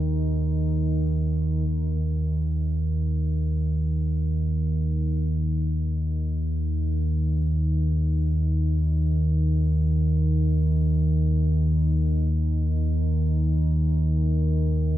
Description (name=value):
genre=ambient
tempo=free time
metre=none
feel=none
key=unclear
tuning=A4 = 440 Hz
part: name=deep rumbling drone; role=solo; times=0.0-15.0 s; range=Eb2 to Eb3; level=-21 LUFS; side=equal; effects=built-in reverb
room=light reverb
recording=echo-heavy mix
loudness=-21 LUFS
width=side -13 dB against mid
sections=0.0-1.7 A section; 1.7-15.0 B section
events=none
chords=none